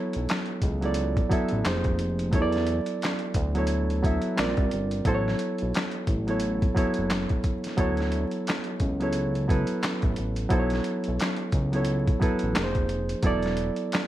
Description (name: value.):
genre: R&B, neo-soul.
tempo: 88 BPM.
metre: 4/4.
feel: swing 60% on 16ths.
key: unclear.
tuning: A4 = 439 Hz.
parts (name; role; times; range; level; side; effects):
bright reed electric piano; accompaniment; 0.0-14.1 s; F3 to E5; -27 LUFS; right 1 dB; none.
boom bap sampler-style drum kit; drums; 0.1-14.1 s; handclaps, hi-hat, kick drum, snare drum; -28 LUFS; equal; none.
fat analog bass; bass; 0.2-13.7 s; E1 to E2; -28 LUFS; equal; none.
room: little or no reverb.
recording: vinyl crackle.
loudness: -24 LUFS.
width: side -13 dB against mid.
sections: 0.0-14.1 A section.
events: none.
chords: 0.0 Dmaj9; 1.6 Fm7; 2.3 Esus2; 4.4 A#add9; 5.0 A69; 7.8 Dmaj9; 10.5 Bsus2; 12.5 Fm7; 13.2 Esus2.